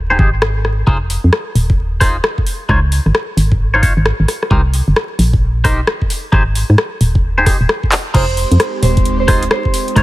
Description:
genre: UK garage, two-step garage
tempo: 132 BPM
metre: 4/4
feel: swing 63% on 16ths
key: F minor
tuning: A4 = 439 Hz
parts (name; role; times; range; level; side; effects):
- organ-like FM bass; bass; 0.0-10.0 s; Eb1 to Ab2; -14 LUFS; equal; sidechain pumping
- twangy electric guitar; stabs; 0.1-10.0 s; Eb4 to Db5; -18 LUFS; equal; phaser, dub echo
- electronic kick drum; drums; 0.2-10.0 s; none; -15 LUFS; equal; none
- garage drum kit; drums; 0.4-10.0 s; crash cymbal, handclaps, hi-hat, rim click; -18 LUFS; left 1 dB; none
- Celtic harp; melody; 8.1-10.0 s; C5; -20 LUFS; right 5 dB; none
- airy breathy pad; sustained chords; 8.1-10.0 s; Ab3 to G4; -22 LUFS; right 2 dB; chorus, sidechain pumping
room: little or no reverb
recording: vinyl crackle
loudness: -11 LUFS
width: side -17 dB against mid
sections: 0.0-10.0 A section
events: drum fill 7.9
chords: 0.0 Abmaj7; 0.9 Fm7; 2.5 Dbmaj9; 4.3 C7(no3); 6.3 Abmaj7; 8.1 Fm7

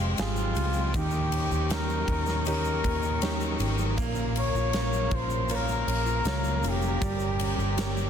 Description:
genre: pop ballad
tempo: 79 BPM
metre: 4/4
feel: straight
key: unclear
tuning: A4 = 439 Hz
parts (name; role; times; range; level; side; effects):
- bright baby grand piano; accompaniment; 0.0-8.1 s; Eb3 to G5; -35 LUFS; right 7 dB; none
- muted studio string section; sustained chords; 0.0-8.1 s; Ab3 to Db6; -38 LUFS; left 3 dB; none
- fingerpicked steel-string acoustic guitar; arpeggios; 0.0-8.1 s; F2 to G4; -37 LUFS; left 8 dB; none
- vintage muted fingered electric bass; bass; 0.0-8.1 s; F1 to Eb2; -29 LUFS; equal; none
- breathy flugelhorn; melody; 0.2-8.1 s; F4 to Db5; -31 LUFS; left 2 dB; none
- huge arena drum kit; drums; 0.2-8.0 s; kick drum, ride cymbal, snare drum; -31 LUFS; equal; none
- egg shaker; percussion; 0.2-8.1 s; none; -47 LUFS; left 8 dB; none
room: light reverb, studio reverb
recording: dense, heavily limited modern master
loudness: -25 LUFS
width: side -8 dB against mid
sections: 0.0-8.1 A section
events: none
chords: 0.0 Fmadd9; 0.9 Eb7; 4.0 Bbm; 7.0 Gdim

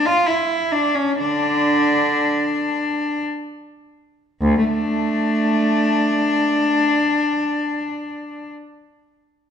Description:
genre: classical, baroque-style suite movement for unaccompanied cello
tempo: free time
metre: none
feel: none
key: unclear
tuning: A4 = 440 Hz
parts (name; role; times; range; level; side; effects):
- rich cello; solo; 0.0-8.5 s; D2 to F4; -17 LUFS; equal; none
room: wet recital hall reverb, RT60 1.5 s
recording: recorded in a church or concert hall, nothing above 11.0 kHz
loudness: -17 LUFS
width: side -8 dB against mid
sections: 0.0-4.4 A section; 4.4-7.7 B section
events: slowing down 0.0-4.4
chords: none

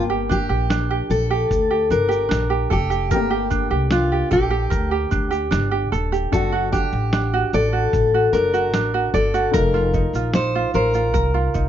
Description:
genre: acoustic pop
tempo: 75 BPM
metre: 4/4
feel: straight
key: G minor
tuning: A4 = 441 Hz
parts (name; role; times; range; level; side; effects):
- fingerpicked steel-string acoustic guitar; melody; 0.0-11.7 s; F4 to C5; -22 LUFS; left 2 dB; none
- dark upright piano; accompaniment; 0.0-11.7 s; A3 to A5; -30 LUFS; left 8 dB; none
- ukulele; accompaniment; 0.0-11.7 s; D4 to D5; -23 LUFS; right 7 dB; none
- upright bass; bass; 0.0-11.7 s; Eb1 to D2; -23 LUFS; left 1 dB; none
- dusty soul sampler-style drum kit; drums; 0.3-11.7 s; kick drum, shaker, snare drum; -24 LUFS; left 1 dB; none
room: light reverb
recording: nothing above 7.5 kHz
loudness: -17 LUFS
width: side -10 dB against mid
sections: 0.0-11.7 A section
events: none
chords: 0.0 Gmadd9; 6.3 D/F#; 9.5 F7sus4

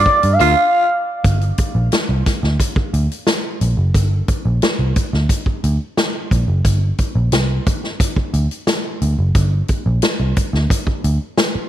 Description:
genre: funk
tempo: 89 BPM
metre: 4/4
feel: straight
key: G dorian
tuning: A4 = 440 Hz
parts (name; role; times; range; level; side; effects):
- expressive synth lead; melody; 0.0-1.2 s; D5 to F5; -16 LUFS; equal; chorus, tape echo
- vintage muted picked electric bass; bass; 0.0-11.6 s; F#1 to G2; -16 LUFS; equal; none
- electric guitar at the edge of break-up; accompaniment; 0.1-0.5 s; D4 to E5; -25 LUFS; left 14 dB; vibrato effect
- swinging big-band drum kit; drums; 0.1-11.5 s; hi-hat, kick drum, snare drum; -18 LUFS; equal; none
- growling tenor saxophone; second line; 0.4-0.9 s; F4; -19 LUFS; right 14 dB; none
room: studio reverb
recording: 1960s-style stereo with parts hard left and right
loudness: -15 LUFS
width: side -12 dB against mid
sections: 0.0-1.2 A section; 1.2-11.7 B section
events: band accent 0.0-1.2; analog synth lead solo 0.0-1.2; break 0.6-1.2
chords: 0.0 Gm7; 1.2 Gm

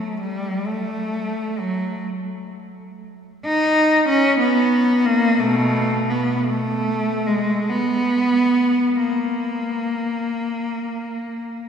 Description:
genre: classical, free, expressive piece for unaccompanied cello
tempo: 45-69 BPM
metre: 4/4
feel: rubato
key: unclear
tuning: A4 = 440 Hz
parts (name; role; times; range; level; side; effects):
- rich cello; solo; 0.0-11.7 s; Cb3 to Eb4; -18 LUFS; equal; none
room: wet cathedral reverb, RT60 4.3 s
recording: recorded in a church or concert hall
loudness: -18 LUFS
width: side -7 dB against mid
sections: 0.0-11.7 A section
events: none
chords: none

